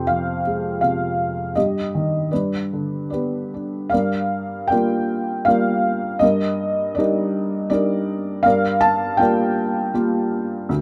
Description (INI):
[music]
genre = classical, lyrical solo piano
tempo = 80 BPM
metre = 3/4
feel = rubato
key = G minor from 3.9 s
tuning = A4 = 440 Hz
[part]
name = felt-muted upright piano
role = solo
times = 0.0-10.8 s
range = D2 to A5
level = -21 LUFS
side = equal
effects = none
[sound]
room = little or no reverb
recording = close, detailed microphones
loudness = -21 LUFS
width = mono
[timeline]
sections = 0.0-3.9 A section; 3.9-10.8 B section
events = none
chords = 0.0 Fm; 1.6 Eb/G; 2.3 G; 3.9 Gm7; 6.2 Ebmaj7/G; 8.4 Gm7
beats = 0.07 0.81 | 1.55 2.31 3.12 | 3.92 4.70 5.47 | 6.22 6.98 7.71 | 8.45 9.19 9.94 | 10.69